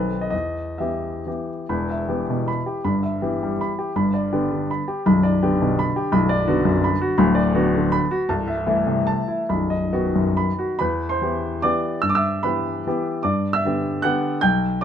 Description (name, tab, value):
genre	classical, romantic triple-time dance for piano with dotted rhythms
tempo	121-178 BPM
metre	3/4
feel	rubato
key	E minor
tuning	A4 = 443 Hz
part	warm baby grand piano	solo	0.0-14.8 s	B0 to G6	-19 LUFS	equal	none
room	light reverb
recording	dark, warm production, nothing above 10.3 kHz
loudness	-19 LUFS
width	side -8 dB against mid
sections	0.0-1.7 A section; 1.7-10.8 B section; 10.8-14.8 C section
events	none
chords	0.3 Em; 2.8 Em/G; 3.9 G; 5.0 G/B; 6.1 Bm; 7.2 Bm/D; 8.3 Am/C; 9.5 B; 10.8 Em; 12.0 Em/G; 13.2 G